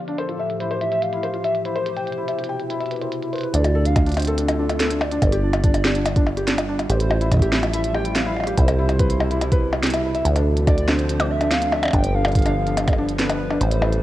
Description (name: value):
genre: IDM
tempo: 143 BPM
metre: 4/4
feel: straight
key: F lydian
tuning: A4 = 440 Hz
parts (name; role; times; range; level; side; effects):
- warbly tape-like pad; sustained chords; 0.0-14.0 s; A2 to G4; -29 LUFS; left 1 dB; chorus, built-in reverb, cassette tape
- felt-muted upright piano; arpeggios; 0.1-13.9 s; D4 to G5; -26 LUFS; left 2 dB; cassette tape, analog delay
- glitchy drum kit; drums; 0.1-14.0 s; hi-hat, percussion blips, snare drum; -24 LUFS; equal; overdrive, low-pass filter on hats, cassette tape, low-pass filter on perc, low-pass filter on snare, low-pass filter on room
- warbly nostalgic lead; melody; 0.2-14.0 s; A4 to G5; -28 LUFS; equal; analog chorus, cassette tape, tape echo
- deep acid bass; bass; 3.5-14.0 s; G1 to D2; -21 LUFS; equal; none
- electronic kick drum; drums; 4.0-13.0 s; none; -19 LUFS; equal; overdrive, cassette tape
room: light reverb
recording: home recording on cassette, low-pass filter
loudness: -18 LUFS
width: side -14 dB against mid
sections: 0.0-3.5 A section; 3.5-14.0 B section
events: filter sweep on ambient pad 0.0-3.5; filter sweep 0.0-3.5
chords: 0.2 Fmaj9/A; 1.9 Cmaj7; 3.5 Dm7; 5.2 G7; 6.9 Fmaj9/A; 8.6 Cmaj7; 10.3 Dm7; 11.9 G7